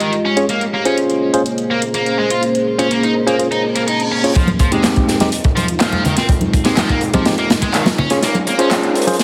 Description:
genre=breakbeat, breaks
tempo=124 BPM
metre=4/4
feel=straight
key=F minor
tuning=A4 = 440 Hz
part: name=deep dark ambient pad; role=sustained chords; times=0.0-9.2 s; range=Ab3 to Eb5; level=-23 LUFS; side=equal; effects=chorus, built-in reverb, vintage 12-bit sampler grit, sidechain pumping
part: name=tight distorted guitar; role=riff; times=0.0-8.7 s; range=Eb3 to F4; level=-23 LUFS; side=equal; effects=distortion, tube saturation, low-pass filter, digital delay
part: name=punchy analog drum machine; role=drums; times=0.0-9.2 s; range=handclaps, hi-hat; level=-27 LUFS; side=equal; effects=high-pass filter on hats, low-pass filter on hats, high-pass filter on snare, low-pass filter on snare, high-pass filter on room, low-pass filter on room
part: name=bright tine electric piano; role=stabs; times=0.4-9.2 s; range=Ab3 to Db5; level=-20 LUFS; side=equal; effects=digital delay
part: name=reverse cymbal and riser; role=sound effects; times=3.6-9.2 s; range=none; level=-31 LUFS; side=equal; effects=none
part: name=fat analog bass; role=bass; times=4.4-9.2 s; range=F1 to Bb1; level=-32 LUFS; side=equal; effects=none
part: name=crunchy breakbeat drum kit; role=drums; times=4.4-9.2 s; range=hi-hat, kick drum, snare drum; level=-19 LUFS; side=equal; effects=none
part: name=congas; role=percussion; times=4.5-9.2 s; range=none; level=-24 LUFS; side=equal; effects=none
room=moderate plate reverb, RT60 1.4 s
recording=heavily compressed radio sound, multiband compression, high-pass filter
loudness=-16 LUFS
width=mono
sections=0.0-4.4 A section; 4.4-9.2 B section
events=reverse cymbal 3.6-4.4; build-up 4.4-9.2; drum fill 8.2-9.2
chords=0.2 Bbm9; 4.4 Fm9; 8.0 Bbm9

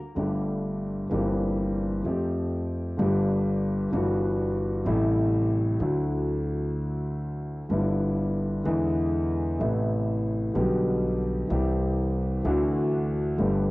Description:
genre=tango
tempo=127 BPM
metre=4/4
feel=rubato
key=G major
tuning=A4 = 438 Hz
part: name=dark grand piano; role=accompaniment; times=0.1-13.7 s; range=G1 to G4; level=-25 LUFS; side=left 1 dB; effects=cassette tape
part: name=upright bass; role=bass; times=0.2-13.7 s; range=G1 to F2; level=-32 LUFS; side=right 1 dB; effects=none
room=light reverb, studio reverb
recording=home recording on cassette, nothing above 10.4 kHz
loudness=-24 LUFS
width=side -20 dB against mid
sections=0.2-13.7 A section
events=break 0.0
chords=0.2 Gsus2; 1.1 C7/G; 2.1 Fadd9; 3.0 G; 3.9 Emadd9/G; 4.9 Am7; 5.8 Dadd9; 7.7 G6; 8.7 E7; 9.6 Amadd9; 10.6 G/B; 11.5 C; 12.4 Dadd9

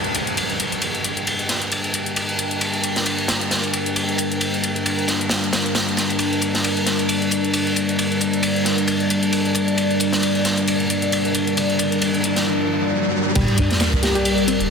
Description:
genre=breakbeat, breaks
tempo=134 BPM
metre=4/4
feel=swing 56% on 16ths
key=G minor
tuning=A4 = 440 Hz
part: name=dark analog pad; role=sustained chords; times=0.0-14.7 s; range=G3 to G5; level=-21 LUFS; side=left 1 dB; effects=chorus, vintage 12-bit sampler grit, sidechain pumping
part: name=garage drum kit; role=drums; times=0.0-14.7 s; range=handclaps, hi-hat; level=-27 LUFS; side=left 3 dB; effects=none
part: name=downlifter, riser and sub drop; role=sound effects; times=0.0-2.6, 11.1-14.7 s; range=none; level=-26 LUFS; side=equal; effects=none
part: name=crunchy breakbeat drum kit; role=drums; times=0.2-14.6 s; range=crash cymbal, kick drum, ride cymbal, snare drum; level=-22 LUFS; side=equal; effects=high-pass filter on kick, high-pass filter on cymbals, high-pass filter on snare, high-pass filter on room
part: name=reed electric piano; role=riff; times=13.4-14.6 s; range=G3 to G4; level=-25 LUFS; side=left 1 dB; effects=fast tremolo, ping-pong delay
part: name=dark detuned saw bass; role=bass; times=13.4-14.7 s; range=D1 to G1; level=-25 LUFS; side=equal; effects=none
room=moderate lush hall reverb, RT60 1.6 s, studio ambience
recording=dense, heavily limited modern master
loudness=-18 LUFS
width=side -5 dB against mid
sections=0.0-13.4 A section; 13.4-14.7 B section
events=filter sweep on analog synth pad 0.0-13.4; riser 11.1-13.4; drop 13.4-14.7; impact 13.4-14.7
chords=0.0 Gm

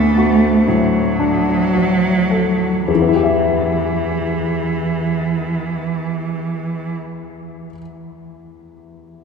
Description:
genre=neoclassical piano and strings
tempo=34-40 BPM (dotted quarters)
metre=6/8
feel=rubato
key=E minor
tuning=A4 = 440 Hz
part: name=rich cello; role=second line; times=0.0-6.9 s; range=E3 to A3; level=-18 LUFS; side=right 3 dB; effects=none
part: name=clear upright piano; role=accompaniment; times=0.0-9.2 s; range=D2 to E5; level=-19 LUFS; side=left 5 dB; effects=none
room=wet cathedral reverb, RT60 4.9 s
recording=recorded in a church or concert hall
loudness=-15 LUFS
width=side -5 dB against mid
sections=0.0-2.9 A section; 2.9-6.2 B section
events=slowing down 0.0-2.9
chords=0.0 D; 2.9 Em

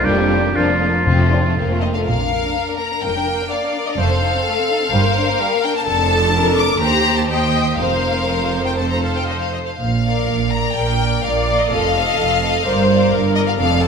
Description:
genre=quick classical-period movement for symphony orchestra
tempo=116-129 BPM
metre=4/4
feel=rubato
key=Bb major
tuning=A4 = 440 Hz
part: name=clear studio violin section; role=melody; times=0.0-13.9 s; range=C4 to D6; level=-21 LUFS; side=left 5 dB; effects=none
part: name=clear oboe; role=second line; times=0.0-1.8 s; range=F4 to G4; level=-20 LUFS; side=equal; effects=none
part: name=clear studio violin section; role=second line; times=0.0-13.9 s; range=G3 to Eb5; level=-22 LUFS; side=left 4 dB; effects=none
part: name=rich studio viola section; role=accompaniment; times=0.0-13.9 s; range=F3 to F5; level=-22 LUFS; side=right 2 dB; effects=none
part: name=mellow French horn section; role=sustained chords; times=0.0-2.1 s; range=A3 to D4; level=-24 LUFS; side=left 3 dB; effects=none
part: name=rich studio cello section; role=bass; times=0.0-13.9 s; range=Eb2 to Bb2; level=-23 LUFS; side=right 3 dB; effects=none
part: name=rich studio double bass section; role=bass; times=0.0-13.9 s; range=F1 to Eb2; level=-22 LUFS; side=right 3 dB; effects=none
part: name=timpani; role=percussion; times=1.1-1.8 s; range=F2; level=-19 LUFS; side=left 3 dB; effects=none
room=wet scoring stage reverb, RT60 1.7 s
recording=none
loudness=-15 LUFS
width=side -6 dB against mid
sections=0.0-2.1 A section; 2.1-13.9 B section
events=none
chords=0.0 Bb/F; 1.1 F; 2.1 Bb; 4.0 F7; 4.9 Gm; 5.9 Dm/F; 6.8 Cm/Eb; 7.8 Fsus4; 9.8 Bb; 11.7 F7; 12.7 Gm

